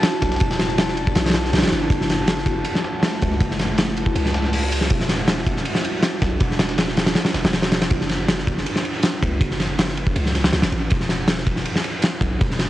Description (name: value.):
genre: drum and bass, jungle.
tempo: 160 BPM.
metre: 4/4.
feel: straight.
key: F# phrygian.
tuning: A4 = 439 Hz.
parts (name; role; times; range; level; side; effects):
ethereal airy pad; sustained chords; 0.0-7.9 s; G3 to F#4; -27 LUFS; right 1 dB; ensemble chorus, built-in reverb, phaser, vintage 12-bit sampler grit.
dusty soul sampler-style drum kit; drums; 0.0-7.9 s; hi-hat, snare drum; -34 LUFS; equal; none.
oversized low-tuned drum kit; drums; 0.0-12.7 s; hi-hat, kick drum, ride cymbal, snare drum; -19 LUFS; equal; cassette tape.
drifting glass-harmonics texture; texture; 0.0-7.9 s; A5; -33 LUFS; left 2 dB; chorus, built-in reverb.
long sustained 808-style bass; bass; 0.2-12.7 s; E1 to C#2; -25 LUFS; equal; none.
room: light reverb.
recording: home recording on cassette.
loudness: -18 LUFS.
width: side -14 dB against mid.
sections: 0.0-7.9 A section; 7.9-12.7 A section.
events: drop 0.0-7.9, 7.9-12.7.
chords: 0.0 Em9; 1.9 F#m9; 4.9 Em9; 7.9 F#5; 10.9 N.C..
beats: 0.03 | 0.41 0.78 1.16 1.53 | 1.91 2.28 2.66 3.03 | 3.41 3.78 4.16 4.53 | 4.91 5.28 5.66 6.03 | 6.41 6.78 7.16 7.53 | 7.91 8.28 8.66 9.03 | 9.41 9.78 10.16 10.53 | 10.91 11.28 11.66 12.03 | 12.41.